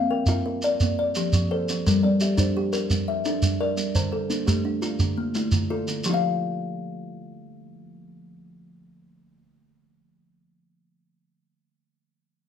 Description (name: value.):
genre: southern african traditional, mbira-style interlocking cycle.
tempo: 114 BPM (dotted quarters).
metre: 12/8.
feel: straight.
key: unclear.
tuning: A4 = 440 Hz.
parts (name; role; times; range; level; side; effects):
kalimba; arpeggios; 0.0-11.0 s; D3 to F5; -25 LUFS; left 3 dB; none.
kalimba; arpeggios; 0.0-11.0 s; D3 to G5; -30 LUFS; right 6 dB; none.
shekere; percussion; 0.3-6.2 s; none; -26 LUFS; right 2 dB; none.
room: moderate large studio reverb, RT60 1.1 s.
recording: band playing live in one room.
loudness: -22 LUFS.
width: side -8 dB against mid.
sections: 0.0-6.1 A section; 6.1-10.3 B section.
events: none.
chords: 0.0 Bb; 0.8 F; 1.9 Gm; 4.0 Dm; 6.1 N.C..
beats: 0.28 0.80 1.33 | 1.85 2.38 2.90 3.43 | 3.96 4.48 5.00 5.53 | 6.06 6.58 7.11 7.63 | 8.16 8.68 9.21 9.73.